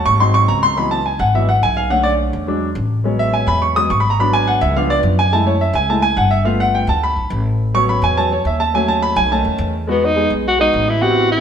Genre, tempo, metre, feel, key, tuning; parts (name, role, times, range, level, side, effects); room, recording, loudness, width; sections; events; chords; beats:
Afro-Cuban jazz; 211 BPM; 4/4; straight; C# minor; A4 = 439 Hz
warm grand piano; accompaniment; 0.0-11.4 s; D3 to D#6; -16 LUFS; equal
upright bass; bass; 0.1-11.4 s; G1 to F#2; -19 LUFS; equal
warm tenor saxophone; melody; 9.9-11.4 s; B3 to F#4; -14 LUFS; equal
wet stone room reverb, RT60 1.3 s; band playing live in one room; -14 LUFS; side -8 dB against mid
0.8-9.9 A section; 9.9-11.4 B section
grand piano solo 0.0-9.9
0.2 G#7; 0.8 C#m11; 1.9 Bm7; 2.5 E9; 3.0 Amaj13; 4.2 G#m7b5; 4.8 C#7b9; 5.3 F#m9; 6.5 G9; 7.6 A69; 8.7 D#m7b5; 9.3 B9; 9.9 Emaj9
0.20 0.49 | 0.77 1.06 1.34 1.62 | 1.91 2.19 2.48 2.76 | 3.05 3.33 3.62 3.90 | 4.19 4.47 4.76 5.04 | 5.33 5.61 5.89 6.18 | 6.46 6.75 7.03 7.32 | 7.60 7.89 8.17 8.46 | 8.74 9.03 9.31 9.59 | 9.88 10.16 10.45 10.73 | 11.02 11.30